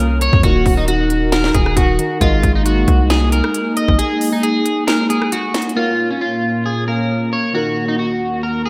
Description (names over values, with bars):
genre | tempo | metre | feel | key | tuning
hip hop, trap | 135 BPM | 4/4 | half-time | Bb minor | A4 = 437 Hz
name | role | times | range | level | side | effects
electric guitar at the edge of break-up | melody | 0.0-8.7 s | Db4 to Eb5 | -22 LUFS | equal | subtle chorus, tape echo
warbly lo-fi synth keys | accompaniment | 0.0-8.7 s | Eb3 to F5 | -27 LUFS | equal | chorus
warbly tape-like pad | sustained chords | 0.0-8.7 s | Eb2 to Bb4 | -23 LUFS | equal | chorus, built-in reverb
long sustained 808-style bass | bass | 0.0-4.0 s | Eb1 to F2 | -19 LUFS | equal | none
trap drum kit | drums | 0.2-5.8 s | hi-hat, kick drum, rim click, snare drum | -20 LUFS | equal | none
room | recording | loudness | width
wet lush hall reverb, RT60 1.7 s | dreamy mix soaked in reverb | -16 LUFS | mono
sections
0.0-5.8 A section; 5.8-8.7 B section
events
break 4.0-5.8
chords
0.4 Ebm; 2.2 Absus2; 5.8 Bbm; 7.5 Ebm